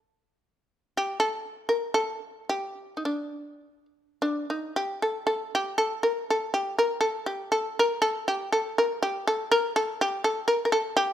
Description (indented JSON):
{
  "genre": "japanese traditional, Japanese chamber music",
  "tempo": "52-62 BPM",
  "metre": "4/4",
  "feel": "rubato",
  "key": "unclear",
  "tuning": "A4 = 440 Hz",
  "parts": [
    { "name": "shamisen", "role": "solo", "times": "1.0-11.1 s", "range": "D4 to Bb4", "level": "-24 LUFS", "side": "equal", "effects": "none" }
  ],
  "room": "light reverb",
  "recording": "minimal, uncompressed stereo recording",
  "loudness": "-25 LUFS",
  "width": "side -11 dB against mid",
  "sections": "0.0-4.2 A section; 4.2-11.1 B section",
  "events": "none",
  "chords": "none",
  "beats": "0.94 1.94 3.04 | 4.16 5.24 6.26 7.26 | 8.28 9.27 10.24"
}